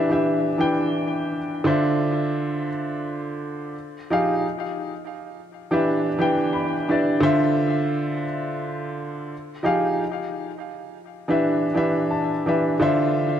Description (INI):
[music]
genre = hip hop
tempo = 86 BPM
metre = 4/4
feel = swing 62% on 16ths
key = D dorian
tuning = A4 = 439 Hz
[part]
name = dark upright piano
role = solo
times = 0.0-13.4 s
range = D3 to B5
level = -21 LUFS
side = equal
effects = cassette tape, ping-pong delay
[sound]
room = wet plate reverb, RT60 2.9 s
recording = dreamy mix soaked in reverb, cassette tape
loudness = -20 LUFS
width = side -9 dB against mid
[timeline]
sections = 0.0-1.6 A section; 1.6-13.4 B section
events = none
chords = 0.0 Em7; 1.6 Dm7; 3.7 Fm7; 4.4 Em7; 7.2 Dm7; 9.3 Fm7; 10.0 Em7; 12.8 Dm7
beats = 0.25 0.95 | 1.65 2.34 3.04 3.74 | 4.44 5.13 5.83 6.53 | 7.23 7.92 8.62 9.32 | 10.02 10.72 11.41 12.11 | 12.81